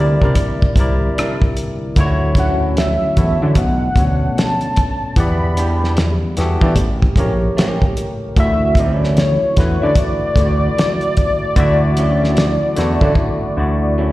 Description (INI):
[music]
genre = R&B, neo-soul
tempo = 75 BPM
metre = 4/4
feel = swing 63% on 16ths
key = D major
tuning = A4 = 442 Hz
[part]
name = warm velvety synth lead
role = melody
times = 0.0-13.9 s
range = C#5 to B5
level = -20 LUFS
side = equal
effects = chorus, slapback echo, plate reverb
[part]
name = barky tine electric piano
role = accompaniment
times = 0.0-14.1 s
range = A2 to F#5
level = -21 LUFS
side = left 1 dB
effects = overdrive, plate reverb, slapback echo
[part]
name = hollow soft pad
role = sustained chords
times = 0.0-14.1 s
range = B2 to Bb4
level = -29 LUFS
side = equal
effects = none
[part]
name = fat analog bass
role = bass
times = 0.0-14.1 s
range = A1 to E3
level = -16 LUFS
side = equal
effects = none
[part]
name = electric guitar through a small old amp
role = second line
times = 0.2-14.1 s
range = F#3 to Bb4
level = -26 LUFS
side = right 2 dB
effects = slapback echo, plate reverb
[part]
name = cloth-damped thuddy drum kit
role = drums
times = 0.2-13.4 s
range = hi-hat, kick drum, rim click, snare drum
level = -17 LUFS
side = equal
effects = none
[sound]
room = light reverb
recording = live gig heard through the venue's PA, recital hall reverb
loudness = -13 LUFS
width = side -17 dB against mid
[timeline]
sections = 0.0-14.1 A section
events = drum fill 13.2-14.1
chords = 0.0 C9; 2.0 Dmaj9; 3.6 Bm7; 5.2 Em7; 6.8 A7b9; 8.4 Dmaj9